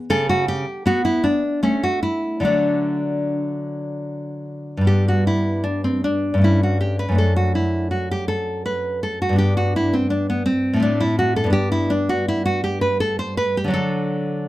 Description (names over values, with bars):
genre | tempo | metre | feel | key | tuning
classical, baroque-style dance for nylon-string guitar | 72-85 BPM | 3/4 | rubato | D major, G major from 4.9 s | A4 = 437 Hz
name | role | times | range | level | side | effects
nylon-string guitar | solo | 0.1-14.5 s | F#2 to C5 | -18 LUFS | equal | none
room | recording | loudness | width
light reverb | dark, warm production | -18 LUFS | side -16 dB against mid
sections
0.0-4.9 A section; 4.9-14.5 A section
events
none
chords
0.0 N.C.; 2.5 D; 4.9 G; 6.4 A7/G; 7.2 D/F#; 9.4 G; 13.7 D